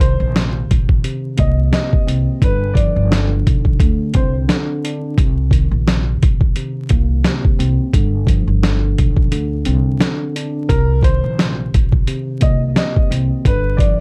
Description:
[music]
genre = hip hop, boom-bap hip-hop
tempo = 87 BPM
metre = 4/4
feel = swing 56% on 16ths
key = C minor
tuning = A4 = 440 Hz
[part]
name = warm upright piano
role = melody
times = 0.0-4.3, 10.7-14.0 s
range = Bb4 to Eb5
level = -26 LUFS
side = equal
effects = high-pass filter, low-pass filter, plate reverb, tape echo
[part]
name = mellow tine electric piano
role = accompaniment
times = 0.0-14.0 s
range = C3 to D4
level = -25 LUFS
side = equal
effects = high-pass filter, low-pass filter
[part]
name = upright bass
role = bass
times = 0.0-14.0 s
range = G1 to D2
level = -20 LUFS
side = equal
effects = none
[part]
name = boom bap sampler-style drum kit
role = drums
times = 0.0-14.0 s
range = hi-hat, kick drum, snare drum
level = -17 LUFS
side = equal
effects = none
[sound]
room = little or no reverb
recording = dark, warm production, vinyl crackle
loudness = -16 LUFS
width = mono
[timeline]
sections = 0.0-14.0 A section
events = break 9.3-10.7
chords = 0.0 Cm7; 2.4 G7; 3.8 Csus2; 5.2 Cm7; 7.9 G7; 9.3 Csus2; 10.7 Cm7; 13.5 G7

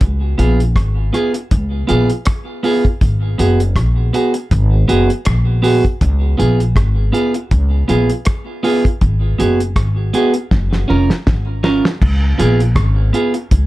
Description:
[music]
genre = roots reggae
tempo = 80 BPM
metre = 4/4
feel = swing 56% on 16ths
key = Db mixolydian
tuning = A4 = 440 Hz
[part]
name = upright bass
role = bass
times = 0.0-13.7 s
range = F1 to Db2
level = -15 LUFS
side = equal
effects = none
[part]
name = cloth-damped thuddy drum kit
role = drums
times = 0.0-13.7 s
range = crash cymbal, hi-hat, kick drum, rim click, snare drum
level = -16 LUFS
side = equal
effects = none
[part]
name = clean electric guitar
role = accompaniment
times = 0.4-13.4 s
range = Cb4 to Bb4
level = -17 LUFS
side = right 2 dB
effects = tape echo
[sound]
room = light reverb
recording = dark, warm production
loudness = -12 LUFS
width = side -17 dB against mid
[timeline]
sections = 0.0-12.0 A section; 12.0-13.7 B section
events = drum fill 10.5-12.0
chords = 0.0 Db7; 3.0 Abm7; 6.0 Db7; 9.0 Abm7; 10.5 Gbmaj7; 12.0 Db7

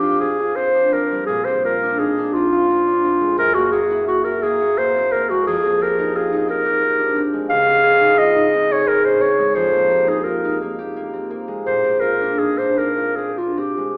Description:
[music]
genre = classical, impressionist duo for clarinet and harp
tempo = 58 BPM (dotted quarters)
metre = 6/8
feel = uneven beats, rubato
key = F dorian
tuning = A4 = 440 Hz
[part]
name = warm clarinet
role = melody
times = 0.0-14.0 s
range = F4 to F5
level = -20 LUFS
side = equal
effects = none
[part]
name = concert harp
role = accompaniment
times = 0.0-14.0 s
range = Db2 to Ab4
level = -23 LUFS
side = equal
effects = none
[sound]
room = wet recital hall reverb, RT60 1.5 s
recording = heard from further back in the room, small speaker sound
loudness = -18 LUFS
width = mono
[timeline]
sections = 0.0-14.0 A section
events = none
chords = 0.0 Fsus2; 1.3 Bb9; 3.4 Gb9; 5.5 Fm11; 7.5 Dbmaj9; 9.6 Fm11; 11.7 Bb9

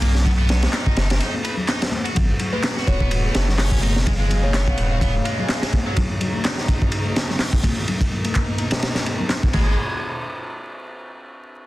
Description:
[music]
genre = breakbeat, breaks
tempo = 126 BPM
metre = 4/4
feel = swing 56% on 16ths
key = G# dorian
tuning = A4 = 440 Hz
[part]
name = biting overdriven guitar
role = riff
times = 0.0-6.0, 9.5-9.8 s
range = F#3 to B4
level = -30 LUFS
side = equal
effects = vintage 12-bit sampler grit, dub echo
[part]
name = saturated sub bass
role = bass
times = 0.0-5.2, 9.5-9.8 s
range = D#1 to B1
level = -20 LUFS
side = equal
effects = none
[part]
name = crunchy breakbeat drum kit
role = drums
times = 0.0-9.6 s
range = crash cymbal, hi-hat, kick drum, ride cymbal, snare drum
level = -21 LUFS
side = equal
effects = none
[part]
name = congas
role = percussion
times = 0.0-9.6 s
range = none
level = -29 LUFS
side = left 3 dB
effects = none
[part]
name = electronic handclaps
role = drums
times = 0.7-9.4 s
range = none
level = -31 LUFS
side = equal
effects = none
[part]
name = dark studio string section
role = sustained chords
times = 2.2-9.8 s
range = B2 to E#5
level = -30 LUFS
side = equal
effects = vintage 12-bit sampler grit, sidechain pumping
[part]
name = buzzing kalimba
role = melody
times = 2.5-4.6 s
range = B4 to C#5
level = -32 LUFS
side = equal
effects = small speaker sound, dub echo
[sound]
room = light reverb, studio ambience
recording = dense, heavily limited modern master, vinyl crackle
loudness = -18 LUFS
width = side -17 dB against mid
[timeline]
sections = 0.0-2.2 A section; 2.2-9.8 B section; 9.8-11.7 C section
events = break 1.2-2.2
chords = 0.3 B; 2.2 G#m7; 6.0 D#m7; 7.9 Bmaj7; 9.5 G#m7; 9.8 N.C.

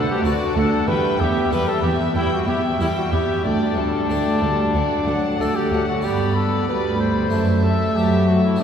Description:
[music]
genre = classical, baroque-style concerto movement with solo episodes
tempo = 93 BPM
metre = 4/4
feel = straight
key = unclear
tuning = A4 = 440 Hz
[part]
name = clear trumpet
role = melody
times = 0.0-8.6 s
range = D4 to C5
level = -23 LUFS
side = left 2 dB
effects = none
[part]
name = dark chamber violin section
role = melody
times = 0.0-8.6 s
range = E5 to B5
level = -31 LUFS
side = left 4 dB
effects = none
[part]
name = rich chamber violin section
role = second line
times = 0.0-8.6 s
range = A4 to G5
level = -28 LUFS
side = left 2 dB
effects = none
[part]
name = dark chamber viola section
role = accompaniment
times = 0.0-8.6 s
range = F#3 to F#4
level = -25 LUFS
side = right 2 dB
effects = none
[part]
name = harpsichord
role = accompaniment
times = 0.0-8.6 s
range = D2 to G4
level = -27 LUFS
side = right 1 dB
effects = none
[part]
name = warm chamber cello section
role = bass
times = 0.2-8.6 s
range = D2 to F#3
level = -22 LUFS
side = right 1 dB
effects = none
[sound]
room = wet cathedral reverb, RT60 4.7 s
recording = heard from further back in the room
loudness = -17 LUFS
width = side -8 dB against mid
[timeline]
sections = 0.0-6.0 A section; 6.0-8.6 A section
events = none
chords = 0.0 D; 0.9 Em; 3.4 Dsus4; 4.7 D; 6.0 G; 7.3 D/F#

